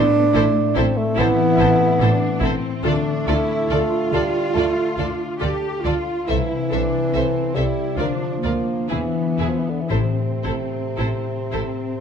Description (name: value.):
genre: classical, slow romantic movement for symphony orchestra.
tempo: 56-73 BPM.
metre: 4/4.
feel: rubato.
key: A minor.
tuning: A4 = 441 Hz.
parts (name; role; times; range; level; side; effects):
mellow bassoon; accompaniment; 0.0-12.0 s; C3 to D4; -22 LUFS; right 2 dB; none.
concert harp; arpeggios; 0.0-12.0 s; A2 to A4; -25 LUFS; left 11 dB; none.
warm symphonic cello section; bass; 0.0-12.0 s; A3 to G4; -25 LUFS; right 3 dB; none.
warm symphonic double bass section; bass; 0.0-11.6 s; A1 to E2; -25 LUFS; right 3 dB; none.
timpani; percussion; 0.0-0.7, 9.9-11.5 s; A2; -27 LUFS; left 2 dB; none.
warm symphonic violin section; second line; 0.3-11.6 s; G#4 to C5; -31 LUFS; left 2 dB; none.
warm symphonic violin section; melody; 0.4-11.6 s; B4 to E5; -33 LUFS; left 3 dB; none.
clear symphonic viola section; accompaniment; 0.4-11.6 s; E4 to A4; -31 LUFS; right 1 dB; none.
room: wet recital hall reverb, RT60 1.4 s.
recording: dark, warm production.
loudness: -18 LUFS.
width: side -7 dB against mid.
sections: 0.0-12.0 A section.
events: none.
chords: 0.0 Am; 2.9 Dm; 6.3 Am/C; 8.0 Bb/D; 8.9 E5; 9.9 Am.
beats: 0.35 1.18 2.01 | 2.85 3.71 4.56 5.42 | 6.29 7.15 7.99 8.90 | 9.91 10.98.